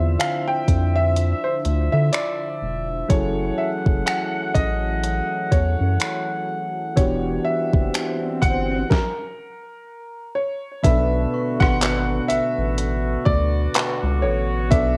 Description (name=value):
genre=contemporary R&B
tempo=62 BPM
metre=4/4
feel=swing 58% on 16ths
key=B minor from 10.8 s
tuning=A4 = 440 Hz
part: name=clear concert grand piano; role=melody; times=0.0-15.0 s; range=A#4 to G5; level=-28 LUFS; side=equal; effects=tape echo
part: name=soft electric-piano-like synth keys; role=accompaniment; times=0.0-15.0 s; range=B2 to D5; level=-29 LUFS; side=equal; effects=chorus
part: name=warm brass ensemble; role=sustained chords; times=0.0-15.0 s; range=D3 to F#5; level=-32 LUFS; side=equal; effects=none
part: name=round analog bass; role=bass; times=0.0-15.0 s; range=E1 to D3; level=-25 LUFS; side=equal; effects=none
part: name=clean 12-bit digital drum machine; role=drums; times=0.2-15.0 s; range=finger snaps, handclaps, hi-hat, kick drum, rim click, snare drum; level=-23 LUFS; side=equal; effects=overdrive
part: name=swell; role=sound effects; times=7.8-8.9 s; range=none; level=-33 LUFS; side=equal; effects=none
part: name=synth chime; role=texture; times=11.3-15.0 s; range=A4 to C#6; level=-37 LUFS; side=equal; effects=ensemble chorus, tape echo
room=little or no reverb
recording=home recording on cassette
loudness=-21 LUFS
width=mono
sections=0.0-10.8 A section; 10.8-15.0 B section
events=swell 7.8-10.8; stop 8.9-10.8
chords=0.0 Dm9; 3.1 F#m9; 7.0 Em9; 8.9 N.C.; 10.8 Bm7